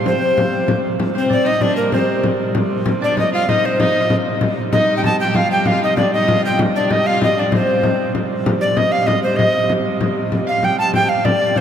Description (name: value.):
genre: medieval dance.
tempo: 129 BPM (dotted quarters).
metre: 6/8.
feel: straight.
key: C dorian.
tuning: A4 = 440 Hz.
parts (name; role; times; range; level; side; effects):
concert harp; second line; 0.0-11.6 s; Bb4 to A5; -24 LUFS; right 2 dB; none.
rich hurdy-gurdy; drone; 0.0-11.6 s; C3 to G3; -24 LUFS; equal; none.
breathy tenor recorder; melody; 0.1-11.6 s; Bb4 to A5; -18 LUFS; equal; none.
rich fiddle; second line; 0.1-8.1 s; Bb3 to G4; -26 LUFS; left 4 dB; none.
frame drum; percussion; 0.1-11.6 s; none; -20 LUFS; left 1 dB; none.
room: wet cathedral reverb, RT60 6.3 s.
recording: none.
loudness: -14 LUFS.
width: side -8 dB against mid.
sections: 1.0-8.5 A section; 8.5-11.6 A section.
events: none.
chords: none.